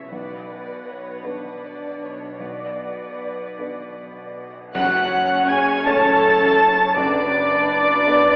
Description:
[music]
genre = cinematic, emotional film score for orchestra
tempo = 53 BPM (dotted quarters)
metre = 6/8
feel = uneven beats, rubato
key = F# minor from 4.7 s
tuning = A4 = 440 Hz
[part]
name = warm symphonic violin section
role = melody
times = 0.0-8.4 s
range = E5 to A6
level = -26 LUFS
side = equal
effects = none
[part]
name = warm chamber violin section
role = second line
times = 0.0-8.4 s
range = B4 to A5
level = -28 LUFS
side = equal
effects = none
[part]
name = dark symphonic viola section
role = accompaniment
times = 0.0-8.4 s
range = C#4 to D5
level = -30 LUFS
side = equal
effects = none
[part]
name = felt-muted upright piano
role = accompaniment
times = 0.0-8.4 s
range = B1 to C#5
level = -33 LUFS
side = equal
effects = none
[part]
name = warm symphonic cello section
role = bass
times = 0.0-8.4 s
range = F#2 to C#3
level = -35 LUFS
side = equal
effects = none
[part]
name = warm symphonic double bass section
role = bass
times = 0.0-8.4 s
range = F#1 to C#2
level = -41 LUFS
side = equal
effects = none
[part]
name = cymbal swell, clash cymbals and concert bass drum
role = percussion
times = 2.4-6.2 s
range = none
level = -39 LUFS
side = equal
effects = none
[part]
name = bright oboe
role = second line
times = 4.7-8.4 s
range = D5 to A5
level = -24 LUFS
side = equal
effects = none
[part]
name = mellow hollow silver concert flute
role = second line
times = 4.7-8.4 s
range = D5 to A5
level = -26 LUFS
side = equal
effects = none
[part]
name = mellow French horn section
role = sustained chords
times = 4.7-8.4 s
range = D4 to A4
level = -25 LUFS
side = equal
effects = none
[part]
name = timpani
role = percussion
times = 4.7-8.0 s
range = F#2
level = -40 LUFS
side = equal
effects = none
[sound]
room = wet scoring stage reverb, RT60 1.7 s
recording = heard from further back in the room, telephone sound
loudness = -18 LUFS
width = mono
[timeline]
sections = 0.0-4.7 A section; 4.7-8.4 B section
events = band accent 4.7-5.5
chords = 0.1 Bm; 4.7 F#m; 7.0 Bm/F#

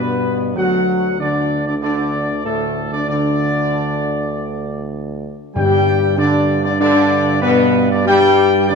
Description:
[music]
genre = classical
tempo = 96 BPM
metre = 4/4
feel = straight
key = G major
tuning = A4 = 440 Hz
[part]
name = mellow trumpet section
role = melody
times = 0.0-8.8 s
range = A4 to G5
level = -21 LUFS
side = right 1 dB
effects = none
[part]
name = clear trombone section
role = sustained chords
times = 0.0-8.8 s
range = A2 to G3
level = -22 LUFS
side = right 4 dB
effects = none
[part]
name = dark French horn section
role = sustained chords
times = 0.0-8.8 s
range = A3 to G4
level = -17 LUFS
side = left 4 dB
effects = none
[part]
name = warm tuba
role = bass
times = 0.0-8.8 s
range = D2 to G2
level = -23 LUFS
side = right 6 dB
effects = none
[part]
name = timpani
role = percussion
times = 5.6-6.4 s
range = G2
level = -23 LUFS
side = right 1 dB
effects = none
[sound]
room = wet scoring stage reverb, RT60 2.0 s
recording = none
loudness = -14 LUFS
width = side -5 dB against mid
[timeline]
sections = 0.0-8.8 A section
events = none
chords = 0.0 G; 0.6 D; 5.6 G5

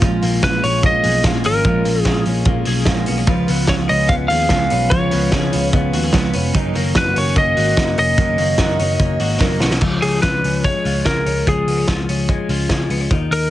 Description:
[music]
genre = jangly indie pop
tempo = 147 BPM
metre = 4/4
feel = straight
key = unclear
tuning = A4 = 440 Hz
[part]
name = picked steel-string acoustic guitar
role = accompaniment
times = 0.0-9.8 s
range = Bb2 to Db5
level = -24 LUFS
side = right 7 dB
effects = none
[part]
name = twelve-string electric guitar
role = arpeggios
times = 0.0-13.5 s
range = Eb3 to Ab4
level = -22 LUFS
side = left 5 dB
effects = warbly pitch drift
[part]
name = picked electric bass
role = bass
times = 0.0-13.5 s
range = F1 to Eb2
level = -21 LUFS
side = equal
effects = none
[part]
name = loose indie drum kit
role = drums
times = 0.0-13.4 s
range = crash cymbal, hi-hat, kick drum, snare drum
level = -19 LUFS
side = equal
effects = none
[part]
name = lightly driven lead guitar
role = melody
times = 0.4-13.5 s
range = Ab4 to F5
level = -19 LUFS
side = equal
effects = ping-pong delay
[sound]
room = light reverb, studio ambience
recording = heavily compressed radio sound, nothing above 10.3 kHz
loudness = -14 LUFS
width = side -14 dB against mid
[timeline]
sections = 0.0-9.8 A section; 9.8-13.5 B section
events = drum fill 9.4-9.8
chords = 0.0 Bbm7; 3.3 Db7; 6.5 Gb6; 9.8 Db

